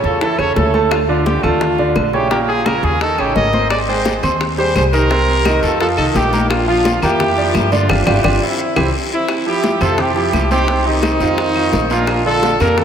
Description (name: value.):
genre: latin, salsa.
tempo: 172 BPM.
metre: 4/4.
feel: straight.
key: F major.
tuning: A4 = 441 Hz.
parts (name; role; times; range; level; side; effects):
warm horn section; melody; 0.0-12.8 s; C4 to Eb5; -17 LUFS; equal; none.
clear concert grand piano; accompaniment; 0.0-12.8 s; Bb2 to C6; -18 LUFS; right 4 dB; none.
upright bass; bass; 0.0-12.8 s; G1 to G2; -20 LUFS; left 1 dB; none.
bongos; percussion; 0.0-12.8 s; none; -25 LUFS; left 6 dB; none.
congas; percussion; 0.0-12.8 s; none; -25 LUFS; left 2 dB; none.
claves; percussion; 0.4-12.8 s; none; -28 LUFS; left 3 dB; none.
guiro; percussion; 3.7-12.8 s; none; -29 LUFS; left 6 dB; none.
room: wet lush hall reverb, RT60 2.6 s.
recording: dreamy mix soaked in reverb.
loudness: -13 LUFS.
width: side -8 dB against mid.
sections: 0.0-9.3 A section; 9.3-12.8 B section.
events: band accent 7.9-9.3; drum fill 8.2-9.3.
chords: 0.0 A; 0.9 Dm; 2.3 Bbm; 3.0 Eb5; 3.7 Abmaj7; 5.1 Cm7; 5.8 F5; 6.5 Bb; 7.9 G5; 8.6 C; 9.3 Fsus2; 10.7 Cm; 11.4 F5; 12.1 Bbmaj7.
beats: 0.21 0.56 | 0.91 1.26 1.61 1.96 | 2.31 2.66 3.01 3.36 | 3.71 4.05 4.41 4.75 | 5.10 5.45 5.80 6.15 | 6.50 6.85 7.20 7.54 | 7.89 8.24 8.59 8.94 | 9.29 9.64 9.99 10.34 | 10.68 11.03 11.38 11.73 | 12.08 12.43 12.78.